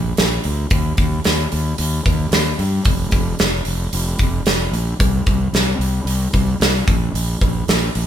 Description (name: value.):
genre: hard rock.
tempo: 112 BPM.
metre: 4/4.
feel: straight.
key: unclear.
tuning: A4 = 436 Hz.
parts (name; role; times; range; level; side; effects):
fuzz fingered electric bass; bass; 0.0-8.1 s; F1 to G2; -19 LUFS; left 1 dB; overdrive.
big rock drum kit; drums; 0.2-8.1 s; hi-hat, kick drum, snare drum; -18 LUFS; right 1 dB; none.
room: moderate small room reverb, RT60 0.5 s.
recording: band playing live in one room.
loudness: -16 LUFS.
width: side -10 dB against mid.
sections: 0.0-8.1 A section.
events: none.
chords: none.